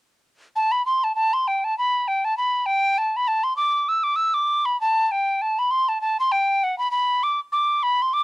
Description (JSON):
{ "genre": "celtic folk", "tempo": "198 BPM", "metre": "4/4", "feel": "swing 57% on 8ths", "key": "A dorian", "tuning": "A4 = 439 Hz", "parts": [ { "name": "mellow tin whistle", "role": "melody", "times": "0.6-8.2 s", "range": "F#5 to E6", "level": "-19 LUFS", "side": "equal", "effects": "none" } ], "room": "light reverb", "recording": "home recording on cassette", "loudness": "-19 LUFS", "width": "side -20 dB against mid", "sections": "0.5-8.2 A section", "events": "none", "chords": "none" }